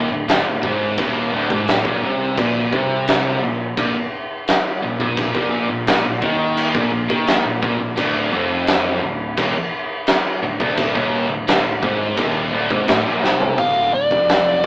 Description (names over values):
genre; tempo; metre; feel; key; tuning
stoner and doom metal; 86 BPM; 4/4; straight; D phrygian; A4 = 444 Hz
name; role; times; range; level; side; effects
high-gain distorted guitar; riff; 0.0-13.6 s; D2 to Eb3; -21 LUFS; equal; distortion
thick fuzz guitar; riff; 0.0-14.7 s; D2 to Eb3; -30 LUFS; left 1 dB; none
thick fuzz guitar; riff; 0.0-14.6 s; D2 to Eb3; -27 LUFS; right 1 dB; distortion
overdriven picked electric bass; bass; 0.0-14.7 s; D1 to Eb2; -28 LUFS; equal; none
oversized low-tuned drum kit; drums; 0.3-14.7 s; crash cymbal, hi-hat, kick drum, snare drum, toms; -19 LUFS; equal; none
fuzz lead guitar; melody; 13.6-14.7 s; D5 to F5; -15 LUFS; equal; distortion
room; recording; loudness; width
light reverb; rough rehearsal-room recording, tube saturation, AM radio sound; -16 LUFS; side -24 dB against mid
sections
0.0-13.6 A section; 13.6-14.7 B section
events
drum fill 13.2-13.6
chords
0.0 D5; 2.4 Bbsus24; 8.0 Dm